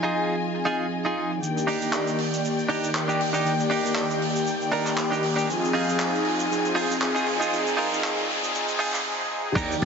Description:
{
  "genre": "nu-disco, nu disco",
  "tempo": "118 BPM",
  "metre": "4/4",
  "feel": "swing 55% on 16ths",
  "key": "F dorian",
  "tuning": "A4 = 441 Hz",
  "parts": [
    { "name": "mellow synth brass", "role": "accompaniment", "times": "0.0-9.8 s", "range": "Eb3 to D5", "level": "-26 LUFS", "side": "equal", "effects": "chorus, sidechain pumping, ping-pong delay" },
    { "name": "dark studio string section", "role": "sustained chords", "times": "0.0-9.8 s", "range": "Eb3 to Ab5", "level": "-31 LUFS", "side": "left 3 dB", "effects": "sidechain pumping" },
    { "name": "direct-recorded clean electric guitar", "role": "riff", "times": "0.0-9.8 s", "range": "D4 to Bb4", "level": "-28 LUFS", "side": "right 2 dB", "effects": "lush chorus, low-pass filter, ping-pong delay" },
    { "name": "tight funk drum kit", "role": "drums", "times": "0.1-9.8 s", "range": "crash cymbal, handclaps, hi-hat, shaker", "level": "-30 LUFS", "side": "right 2 dB", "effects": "high-pass filter on hats, low-pass filter on hats, high-pass filter on cymbals, low-pass filter on cymbals, high-pass filter on perc, low-pass filter on perc, high-pass filter on snare, low-pass filter on snare, high-pass filter on room, low-pass filter on room" },
    { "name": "riser and swell", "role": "sound effects", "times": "4.5-9.6 s", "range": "none", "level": "-33 LUFS", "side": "equal", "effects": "none" },
    { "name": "slap bass", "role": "bass", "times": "9.6-9.8 s", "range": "Bb1 to Eb2", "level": "-27 LUFS", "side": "equal", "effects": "sidechain pumping" },
    { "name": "electronic kick drum", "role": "drums", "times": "9.6-9.7 s", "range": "none", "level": "-30 LUFS", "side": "equal", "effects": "none" }
  ],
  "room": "wet plate reverb, RT60 2.2 s",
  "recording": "heavily compressed radio sound, high-pass filter, nothing above 7.8 kHz",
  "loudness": "-22 LUFS",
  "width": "side -6 dB against mid",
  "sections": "0.0-1.4 A section; 1.4-9.6 B section",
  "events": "build-up 1.4-9.6; filter sweep 1.4-9.6; riser 4.5-9.1; swell 8.5-9.6",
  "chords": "0.0 Fm7; 1.4 Ebmaj7; 5.5 Fm7"
}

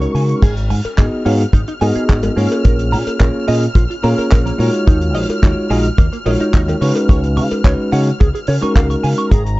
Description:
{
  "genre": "nu-disco, nu disco",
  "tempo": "108 BPM",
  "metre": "4/4",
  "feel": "straight",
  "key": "unclear",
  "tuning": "A4 = 441 Hz",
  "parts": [
    { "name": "bell-like tine electric piano", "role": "accompaniment", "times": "0.0-9.3 s", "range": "G#3 to E#5", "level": "-18 LUFS", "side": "equal", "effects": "tape echo" },
    { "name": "rich symphonic string section", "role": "sustained chords", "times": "0.0-9.6 s", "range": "A#5 to E#6", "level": "-29 LUFS", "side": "equal", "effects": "sidechain pumping" },
    { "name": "direct-recorded clean electric guitar", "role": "riff", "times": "0.0-9.4 s", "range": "D#3 to C#6", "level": "-24 LUFS", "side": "right 2 dB", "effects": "analog chorus" },
    { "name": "fingered electric bass with an envelope filter", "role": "bass", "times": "0.0-9.6 s", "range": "G#1 to C#3", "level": "-17 LUFS", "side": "equal", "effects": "none" },
    { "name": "damped 70s drum kit", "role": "drums", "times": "0.0-9.6 s", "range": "crash cymbal, handclaps, hi-hat", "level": "-29 LUFS", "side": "right 1 dB", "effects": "small room reverb" },
    { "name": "kick drum", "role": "drums", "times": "0.4-9.4 s", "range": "none", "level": "-12 LUFS", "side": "equal", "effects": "small room reverb" },
    { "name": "cowbell", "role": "percussion", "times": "0.8-8.9 s", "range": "none", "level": "-27 LUFS", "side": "left 4 dB", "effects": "none" }
  ],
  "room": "studio reverb",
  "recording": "dry, gritty hardware recording, nothing above 7.7 kHz",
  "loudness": "-12 LUFS",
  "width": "side -19 dB against mid",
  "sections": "0.0-9.6 A section",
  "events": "none",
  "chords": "0.4 G#m7; 2.6 D#m11; 6.8 C#9sus4"
}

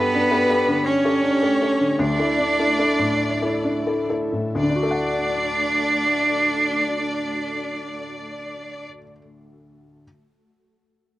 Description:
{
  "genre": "neoclassical piano and strings",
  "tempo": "43-57 BPM (dotted quarters)",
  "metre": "6/8",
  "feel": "rubato",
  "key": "D major",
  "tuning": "A4 = 440 Hz",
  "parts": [
    { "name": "clear chamber violin section", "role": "melody", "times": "0.0-8.9 s", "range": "B4 to D5", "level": "-26 LUFS", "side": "left 2 dB", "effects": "cassette tape" },
    { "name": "clear cello", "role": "second line", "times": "0.0-8.8 s", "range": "B3 to D4", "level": "-22 LUFS", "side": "right 2 dB", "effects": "cassette tape" },
    { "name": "felt-muted upright piano", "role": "accompaniment", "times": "0.0-10.1 s", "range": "D2 to F#5", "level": "-23 LUFS", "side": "left 1 dB", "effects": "cassette tape" },
    { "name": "ethereal airy pad", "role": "sustained chords", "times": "0.1-8.8 s", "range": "A3 to A4", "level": "-35 LUFS", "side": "right 1 dB", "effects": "ensemble chorus, built-in reverb, tremolo, cassette tape" }
  ],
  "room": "light reverb",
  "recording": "home recording on cassette",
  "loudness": "-18 LUFS",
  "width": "side -15 dB against mid",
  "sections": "0.0-4.6 A section; 4.6-10.0 B section",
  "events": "slowing down 0.0-4.6",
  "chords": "0.0 Gsus2; 2.0 Dsus2; 4.6 D"
}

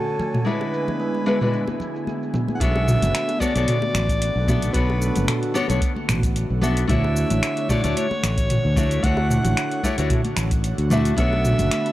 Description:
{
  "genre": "sunset chillout",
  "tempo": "112 BPM",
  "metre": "4/4",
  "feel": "swing 54% on 16ths",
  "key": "B dorian",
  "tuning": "A4 = 440 Hz",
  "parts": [
    { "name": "warm soprano saxophone", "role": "melody", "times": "0.0-11.9 s", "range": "A4 to F#5", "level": "-27 LUFS", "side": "equal", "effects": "tape echo" },
    { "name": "airy breathy pad", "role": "sustained chords", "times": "0.0-11.9 s", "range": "D3 to C#5", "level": "-29 LUFS", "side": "equal", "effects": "chorus, vintage 12-bit sampler grit" },
    { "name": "kalimba", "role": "arpeggios", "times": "0.0-2.6, 11.2-11.9 s", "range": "G#3 to G#4", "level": "-33 LUFS", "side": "right 2 dB", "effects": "tape echo" },
    { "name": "wind-like tuned noise texture", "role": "texture", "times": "0.0-2.6, 11.5-11.9 s", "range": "G#5 to B5", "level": "-40 LUFS", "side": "right 2 dB", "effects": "built-in reverb" },
    { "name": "smooth R&B drum kit", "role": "drums", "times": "0.1-11.9 s", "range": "cabasa, finger snaps, hi-hat, toms", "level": "-25 LUFS", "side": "right 1 dB", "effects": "low-pass filter on perc, low-pass filter on toms, low-pass filter on hats, low-pass filter on snare, low-pass filter on room" },
    { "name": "congas and bongos", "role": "percussion", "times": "0.2-11.9 s", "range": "none", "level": "-29 LUFS", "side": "left 1 dB", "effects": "none" },
    { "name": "nylon-string guitar", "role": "accompaniment", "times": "0.4-11.9 s", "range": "G#3 to E5", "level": "-25 LUFS", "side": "left 1 dB", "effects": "auto-pan, tape echo" },
    { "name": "fingered electric bass", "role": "bass", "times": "2.6-11.7 s", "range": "F#1 to D2", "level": "-22 LUFS", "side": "equal", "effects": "transformer saturation" },
    { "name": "electronic kick drum", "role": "drums", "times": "2.6-11.3 s", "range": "none", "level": "-24 LUFS", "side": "equal", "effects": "overdrive" }
  ],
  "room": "small room ambience",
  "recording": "dry, gritty hardware recording",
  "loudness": "-19 LUFS",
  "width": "side -15 dB against mid",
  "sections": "0.0-2.6 A section; 2.6-11.9 B section",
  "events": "filter sweep on analog synth pad 0.0-2.6",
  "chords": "0.5 E7; 2.6 Bm7; 6.9 Dmaj7; 11.2 Bm7"
}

